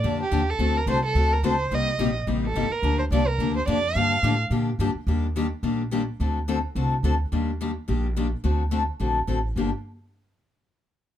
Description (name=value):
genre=acoustic string swing (jazz manouche)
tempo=214 BPM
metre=4/4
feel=swing 56% on 8ths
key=G minor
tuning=A4 = 439 Hz
part: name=dark violin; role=melody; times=0.0-4.4 s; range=G4 to F5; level=-26 LUFS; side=right 4 dB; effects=none
part: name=picked steel-string acoustic guitar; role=accompaniment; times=0.0-9.7 s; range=G2 to A4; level=-26 LUFS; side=left 4 dB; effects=none
part: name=upright bass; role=bass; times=0.0-9.7 s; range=G1 to Bb2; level=-25 LUFS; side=equal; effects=none
room=light reverb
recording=close, detailed microphones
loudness=-22 LUFS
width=side -11 dB against mid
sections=0.0-5.1 A section; 5.1-9.6 B section; 9.6-10.7 C section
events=none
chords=0.0 Gm7; 0.6 D7; 1.7 Cm7; 2.8 Gm7; 5.1 Ebmaj7; 6.2 D7; 7.3 Ebmaj7; 8.4 D7; 9.6 Gm7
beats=0.04 0.32 | 0.60 0.88 1.16 1.44 | 1.72 1.99 2.27 2.55 | 2.83 3.11 3.39 3.67 | 3.95 4.23 4.51 4.79 | 5.07 5.35 5.63 5.91 | 6.19 6.47 6.75 7.03 | 7.31 7.59 7.87 8.15 | 8.43 8.71 9.00 9.28 | 9.56